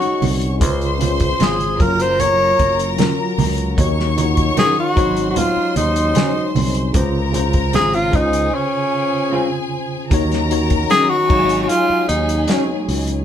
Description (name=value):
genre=lush 1970s-style soul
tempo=76 BPM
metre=4/4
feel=straight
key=Db major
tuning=A4 = 439 Hz
part: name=breathy tenor saxophone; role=melody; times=0.0-12.8 s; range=Db4 to Db5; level=-17 LUFS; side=left 1 dB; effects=none
part: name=clear studio string section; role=second line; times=0.0-13.2 s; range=Ab4 to Db6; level=-25 LUFS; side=left 3 dB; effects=none
part: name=tine electric piano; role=accompaniment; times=0.0-13.2 s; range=Db3 to Db5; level=-22 LUFS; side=left 1 dB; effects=overdrive, fast stereo tremolo
part: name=mellow French horn section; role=sustained chords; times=0.0-13.2 s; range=Db3 to C5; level=-30 LUFS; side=right 1 dB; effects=none
part: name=warm soul drum kit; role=drums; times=0.0-13.2 s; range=crash cymbal, hi-hat, kick drum, snare drum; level=-21 LUFS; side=equal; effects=none
part: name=fingered electric bass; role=bass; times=0.2-13.2 s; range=Gb1 to Eb2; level=-21 LUFS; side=equal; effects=none
part: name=congas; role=percussion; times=0.2-7.9 s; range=none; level=-23 LUFS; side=right 7 dB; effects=none
part: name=electric guitar through a small old amp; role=riff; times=1.4-12.6 s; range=Gb3 to Bb4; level=-24 LUFS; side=equal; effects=none
room=moderate studio reverb, RT60 0.6 s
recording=band playing live in one room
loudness=-14 LUFS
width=side -9 dB against mid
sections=0.0-10.1 A section; 10.1-13.2 A section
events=break 8.5-10.1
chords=0.0 Ab7sus4; 0.6 Dbmaj7; 1.8 Gbmaj7; 3.8 Ebm7; 5.0 Ab7sus4; 6.9 Dbmaj7; 10.1 Ebm7; 11.3 Ab7sus4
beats=| 0.61 1.41 2.20 2.99 | 3.78 4.57 5.36 6.15 | 6.95 7.74 8.53 9.32 | 10.11 10.90 11.69 12.48